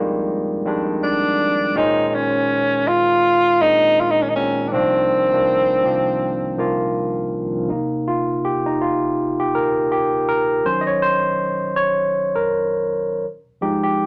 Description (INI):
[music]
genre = R&B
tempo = 81 BPM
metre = 4/4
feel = swing 59% on 16ths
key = C minor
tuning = A4 = 440 Hz
[part]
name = barky tine electric piano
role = accompaniment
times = 0.0-14.1 s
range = C2 to Eb5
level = -22 LUFS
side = equal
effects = overdrive
[part]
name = mellow tenor saxophone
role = melody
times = 1.0-7.0 s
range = C4 to F4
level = -19 LUFS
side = equal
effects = none
[sound]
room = moderate studio ambience, RT60 0.5 s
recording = none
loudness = -19 LUFS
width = mono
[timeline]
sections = 0.0-7.7 A section; 7.7-14.1 B section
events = tine electric piano solo 7.7-14.1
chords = 0.0 Fm9; 1.8 Bbm9; 4.7 Cm9; 7.7 Cm7; 10.7 Ebm7; 13.2 Fm7